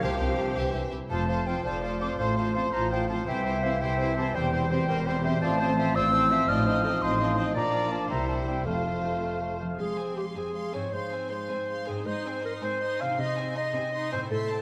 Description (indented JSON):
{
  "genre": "classical, dramatic, fast romantic movement for symphony orchestra",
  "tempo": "103-113 BPM (dotted quarters)",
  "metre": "6/8",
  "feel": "rubato",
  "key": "F major, F minor from 9.8 s",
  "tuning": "A4 = 438 Hz",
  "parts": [
    { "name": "clear studio violin section", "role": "melody", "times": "0.0-14.6 s", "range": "C5 to C6", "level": "-40 LUFS", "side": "equal", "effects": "none" },
    { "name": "bright symphonic violin section", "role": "second line", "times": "0.0-14.6 s", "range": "E4 to F5", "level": "-45 LUFS", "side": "equal", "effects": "none" },
    { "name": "concert flute", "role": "second line", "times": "0.0-9.6 s", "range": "E5 to F6", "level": "-32 LUFS", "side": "equal", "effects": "none" },
    { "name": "warm clarinet", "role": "second line", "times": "0.0-14.6 s", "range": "G4 to F5", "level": "-35 LUFS", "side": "equal", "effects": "none" },
    { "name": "warm oboe", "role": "second line", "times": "0.0-9.8 s", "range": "C5 to F5", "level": "-39 LUFS", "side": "equal", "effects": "none" },
    { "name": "rich studio viola section", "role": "accompaniment", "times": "0.0-14.6 s", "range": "G3 to G4", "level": "-40 LUFS", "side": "equal", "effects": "none" },
    { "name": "warm bassoon", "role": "accompaniment", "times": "0.0-9.8 s", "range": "E3 to A3", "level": "-38 LUFS", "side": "equal", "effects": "none" },
    { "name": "clear trombone section", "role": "sustained chords", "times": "0.0-0.9 s", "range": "none", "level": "barely audible", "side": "none", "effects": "none" },
    { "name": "dark French horn section", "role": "sustained chords", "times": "0.0-9.6 s", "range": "E3 to C5", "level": "-38 LUFS", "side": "equal", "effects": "none" },
    { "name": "concert harp", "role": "arpeggios", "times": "0.0-14.6 s", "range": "F2 to A5", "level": "-37 LUFS", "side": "equal", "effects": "none" },
    { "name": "bright symphonic double bass section", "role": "bass", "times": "0.0-9.6 s", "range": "E1 to C2", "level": "-35 LUFS", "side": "equal", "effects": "none" },
    { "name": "warm symphonic cello section", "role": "bass", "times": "0.0-14.6 s", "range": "E2 to C3", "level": "-38 LUFS", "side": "equal", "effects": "none" }
  ],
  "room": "wet recital hall reverb, RT60 1.5 s",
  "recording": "none",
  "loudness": "-28 LUFS",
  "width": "mono",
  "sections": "0.0-1.1 A section; 1.1-9.8 B section; 9.8-14.6 C section",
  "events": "none",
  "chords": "0.0 Csus4; 0.6 C; 1.1 F; 2.2 F/A; 3.3 C; 4.3 C/E; 5.4 F/A; 6.5 F7/A; 7.6 Bb; 8.1 C7; 8.7 F; 9.8 Fm; 10.9 Fm/Ab; 12.1 Ab; 13.2 Ab/C",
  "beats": "| 0.03 0.56 | 1.10 1.65 | 2.19 2.73 | 3.27 3.81 | 4.35 4.89 | 5.42 5.96 | 6.49 7.02 | 7.56 8.10 | 8.66 9.22 | 9.79 10.36 | 10.93 11.50 | 12.07 12.63 | 13.19 13.76 | 14.31"
}